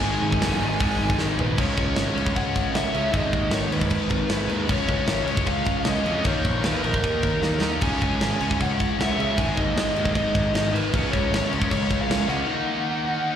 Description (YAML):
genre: punk rock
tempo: 154 BPM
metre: 4/4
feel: straight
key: G# minor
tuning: A4 = 439 Hz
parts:
  - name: bluesy overdriven lead guitar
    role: melody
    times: 0.0-13.4 s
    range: A#4 to A#5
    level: -28 LUFS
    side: equal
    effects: distortion, slapback echo
  - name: cranked stack guitar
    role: riff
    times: 0.0-13.4 s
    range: G#2 to D#4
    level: -28 LUFS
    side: right 8 dB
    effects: overdrive, slapback echo
  - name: overdriven electric guitar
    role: riff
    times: 0.0-13.4 s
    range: G#2 to D#4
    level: -28 LUFS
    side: left 10 dB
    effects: none
  - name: fuzz picked electric bass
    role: bass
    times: 0.0-12.4 s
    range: F#1 to E#2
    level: -27 LUFS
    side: left 1 dB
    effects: overdrive
  - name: tight metal drum kit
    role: drums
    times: 0.3-12.4 s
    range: crash cymbal, hi-hat, kick drum, snare drum, toms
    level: -26 LUFS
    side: equal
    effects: none
room: little or no reverb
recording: live gig heard through the venue's PA, recital hall reverb, lossy compression artefacts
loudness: -21 LUFS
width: side -9 dB against mid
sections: 0.0-1.6 A section; 1.6-13.4 B section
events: drum fill 1.2-1.6, 7.4-7.8; break 12.5-13.4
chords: 0.0 G#5; 1.6 C#m; 3.1 G#m; 4.7 C#; 6.3 D#5; 7.8 C#m; 9.4 G#5; 10.9 C#5; 12.5 D#m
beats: | 0.03 0.42 0.81 1.20 | 1.58 1.97 2.36 2.75 | 3.14 3.53 3.92 4.31 | 4.70 5.08 5.47 5.86 | 6.25 6.64 7.03 7.42 | 7.81 8.20 8.59 8.98 | 9.37 9.76 10.14 10.53 | 10.92 11.31 11.70 12.09 | 12.48 12.86 13.25